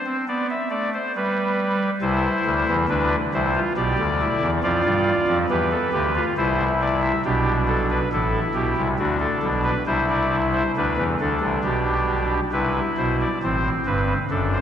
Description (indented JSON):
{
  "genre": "classical, baroque-style 3-part fugue for pipe organ",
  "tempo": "69 BPM",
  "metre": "3/4",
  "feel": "straight",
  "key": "C major",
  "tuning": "A4 = 440 Hz",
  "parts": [
    { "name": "pipe organ, soft reed", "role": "solo", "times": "0.0-14.6 s", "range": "F#1 to E5", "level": "-19 LUFS", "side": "equal", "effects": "none" }
  ],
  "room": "wet cathedral reverb, RT60 4.3 s",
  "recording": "none",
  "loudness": "-19 LUFS",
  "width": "side -9 dB against mid",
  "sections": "0.0-12.5 A section; 12.5-14.6 B section",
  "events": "none",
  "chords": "0.0 D5; 1.1 G; 2.0 C; 3.8 G/B; 4.6 G7/F; 6.4 C; 7.2 G/B; 9.0 D; 9.9 D5/C; 11.6 G/B; 12.5 Cmaj7",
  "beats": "0.28 1.15 | 2.01 2.88 3.75 | 4.62 5.49 6.37 | 7.24 8.11 8.99 | 9.87 10.75 11.63 | 12.52 13.41 14.29"
}